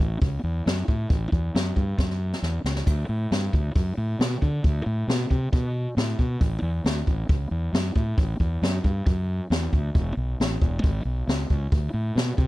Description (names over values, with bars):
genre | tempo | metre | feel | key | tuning
blues rock power trio and southern rock | 136 BPM | 4/4 | straight | A mixolydian | A4 = 440 Hz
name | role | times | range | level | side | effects
fuzz fingered electric bass | bass | 0.0-12.5 s | E1 to D3 | -25 LUFS | equal | overdrive
jazz brush drum kit | drums | 0.2-12.5 s | hi-hat, kick drum, snare drum, splash cymbal | -23 LUFS | equal | none
room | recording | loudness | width
little or no reverb | none | -22 LUFS | side -18 dB against mid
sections
0.0-12.5 A section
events
drum fill 2.0-2.9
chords
none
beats
0.21 0.66 | 1.10 1.54 1.99 2.43 | 2.87 3.31 3.75 4.20 | 4.64 5.08 5.53 5.97 | 6.41 6.85 7.29 7.74 | 8.18 8.62 9.06 9.51 | 9.95 10.39 10.83 11.27 | 11.71 12.16